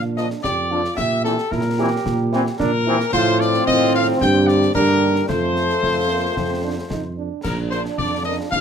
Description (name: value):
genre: military-style march for wind band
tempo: 112 BPM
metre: 2/4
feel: straight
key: Bb major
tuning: A4 = 440 Hz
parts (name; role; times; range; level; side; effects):
- clear euphonium; second line; 0.0-8.6 s; A3 to G4; -25 LUFS; right 5 dB; none
- dark tuba; bass; 0.0-8.6 s; Bb1 to Bb2; -22 LUFS; right 2 dB; none
- dark trumpet section; melody; 0.2-8.6 s; A4 to G5; -22 LUFS; left 2 dB; none
- dark French horn section; accompaniment; 0.2-8.3 s; F3 to Bb4; -24 LUFS; left 5 dB; none
- dark trombone section; sustained chords; 0.2-8.6 s; D3 to Eb4; -27 LUFS; equal; none
- concert snare drum, concert bass drum and clash cymbals; drums; 0.2-8.6 s; none; -30 LUFS; left 2 dB; none
room: light reverb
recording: none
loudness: -17 LUFS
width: side -7 dB against mid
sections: 0.0-8.6 A section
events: none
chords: 0.0 Bb; 1.0 C7/Bb; 3.1 F/A; 4.2 Gm; 5.3 F; 7.4 Bb